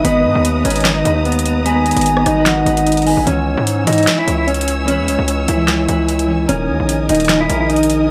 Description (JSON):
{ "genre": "hip hop, trap", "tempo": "149 BPM", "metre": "4/4", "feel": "half-time", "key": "unclear", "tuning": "A4 = 440 Hz", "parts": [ { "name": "mellow electric guitar", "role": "melody", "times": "0.0-8.1 s", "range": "B3 to E4", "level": "-19 LUFS", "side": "equal", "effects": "tremolo, low-pass filter" }, { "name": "soft octave-layered synth lead", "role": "second line", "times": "0.0-3.3 s", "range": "D#5 to G#5", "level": "-22 LUFS", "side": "equal", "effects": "chorus, tremolo, tape echo" }, { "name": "concert harp", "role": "accompaniment", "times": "0.0-8.1 s", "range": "D#3 to E5", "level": "-23 LUFS", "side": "equal", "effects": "low-pass filter" }, { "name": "dark symphonic string section", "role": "sustained chords", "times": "0.0-8.1 s", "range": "A#4 to E6", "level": "-26 LUFS", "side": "equal", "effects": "none" }, { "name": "distorted 808-style bass", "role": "bass", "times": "0.0-8.1 s", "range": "D#1 to G#2", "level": "-22 LUFS", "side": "equal", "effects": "distortion" }, { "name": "booming analog drum machine", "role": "drums", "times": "0.0-8.0 s", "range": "handclaps, hi-hat, rim click, snare drum", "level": "-22 LUFS", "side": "equal", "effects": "none" } ], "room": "little or no reverb", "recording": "none", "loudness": "-15 LUFS", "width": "mono", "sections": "0.0-3.3 A section; 3.3-8.1 A section", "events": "none", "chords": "0.0 G#m; 3.3 C#m; 6.5 D#sus4" }